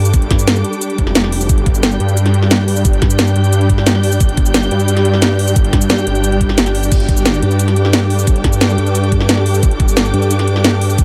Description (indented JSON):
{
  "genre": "dark technical drum and bass",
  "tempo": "177 BPM",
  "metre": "4/4",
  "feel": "straight",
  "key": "unclear",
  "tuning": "A4 = 440 Hz",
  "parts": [
    { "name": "swarming drone", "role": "sustained chords", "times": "0.0-11.0 s", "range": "G3 to D5", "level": "-24 LUFS", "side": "equal", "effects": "built-in reverb, sidechain pumping" },
    { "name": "detuned saw bass", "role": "bass", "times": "0.0-7.4, 9.6-10.1 s", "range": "F1 to G2", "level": "-18 LUFS", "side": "equal", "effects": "chorus, sidechain pumping" },
    { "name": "dark symphonic string section", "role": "texture", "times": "0.0-11.0 s", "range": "D4 to G6", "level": "-23 LUFS", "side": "equal", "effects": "sidechain pumping" },
    { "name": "drum and bass drum kit", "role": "drums", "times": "0.1-11.0 s", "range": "crash cymbal, hi-hat, shaker, snare drum", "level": "-19 LUFS", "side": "equal", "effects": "none" },
    { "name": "electronic kick drum", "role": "drums", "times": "0.1-11.0 s", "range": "none", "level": "-15 LUFS", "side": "equal", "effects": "none" },
    { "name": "formant-sweep wobble bass", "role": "bass", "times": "7.4-11.0 s", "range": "G1 to G2", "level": "-17 LUFS", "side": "equal", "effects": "chorus" }
  ],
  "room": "light reverb",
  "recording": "none",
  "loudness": "-13 LUFS",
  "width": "mono",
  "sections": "0.0-11.0 A section",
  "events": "none",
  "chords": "0.0 G5",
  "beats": "| 0.14 0.47 0.81 1.15 | 1.49 1.83 2.17 2.51 | 2.85 3.19 3.53 3.87 | 4.20 4.54 4.88 5.22 | 5.56 5.90 6.24 6.58 | 6.92 7.25 7.59 7.93 | 8.27 8.61 8.95 9.29 | 9.63 9.97 10.31 10.64 | 10.98"
}